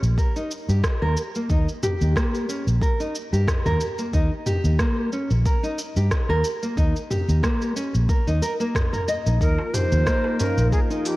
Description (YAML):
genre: organic downtempo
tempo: 91 BPM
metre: 4/4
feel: swing 55% on 16ths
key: Eb mixolydian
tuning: A4 = 440 Hz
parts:
  - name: nylon-string guitar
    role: arpeggios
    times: 0.0-11.0 s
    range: Bb3 to Eb5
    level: -26 LUFS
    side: equal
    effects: ping-pong delay
  - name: fretless electric bass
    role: bass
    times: 0.0-10.7 s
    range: Bb1 to G2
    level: -20 LUFS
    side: equal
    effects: transformer saturation, analog chorus, sidechain pumping
  - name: organic electronic drum kit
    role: drums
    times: 0.0-11.2 s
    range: cabasa, hi-hat, rim click, toms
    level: -29 LUFS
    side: equal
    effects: none
  - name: electronic kick drum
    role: drums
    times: 0.2-10.9 s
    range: none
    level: -23 LUFS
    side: equal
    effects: none
  - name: Native American-style cedar flute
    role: melody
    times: 9.4-11.2 s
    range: G4 to C5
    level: -26 LUFS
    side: equal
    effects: ping-pong delay
  - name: warm analog pad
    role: sustained chords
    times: 9.4-11.2 s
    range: F3 to Bb4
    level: -28 LUFS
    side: left 1 dB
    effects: chorus, sidechain pumping
  - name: darbuka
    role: percussion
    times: 9.6-11.2 s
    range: none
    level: -30 LUFS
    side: right 1 dB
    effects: none
room: light reverb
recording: worn, warbling old tape, cassette tape, warbly pitch drift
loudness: -20 LUFS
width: side -19 dB against mid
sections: 0.0-11.2 A section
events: none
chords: 0.0 Ebadd9